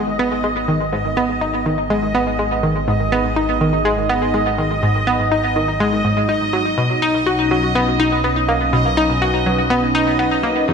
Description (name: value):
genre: ambient, sequencer-driven space music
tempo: 123 BPM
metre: 4/4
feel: straight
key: G# minor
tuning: A4 = 442 Hz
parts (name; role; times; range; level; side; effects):
- phased analog pad; sustained chords; 0.0-10.7 s; F#3 to D#5; -24 LUFS; right 1 dB; phaser, chorus
- analog pluck; riff; 0.0-10.7 s; E2 to F#4; -18 LUFS; equal; chorus, cassette tape, tape echo
- fat analog bass; bass; 0.0-10.7 s; E1 to B1; -26 LUFS; equal; tube saturation
- bubbling stepped-filter texture; texture; 0.0-10.7 s; D#5; -21 LUFS; right 2 dB; chorus, built-in reverb
room: wet concert hall reverb, RT60 2.3 s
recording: nothing above 10.6 kHz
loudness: -15 LUFS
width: side -6 dB against mid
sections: 0.0-10.7 A section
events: fade-in on analog synth pad 0.0-10.7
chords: 0.0 G#m7; 6.8 Badd9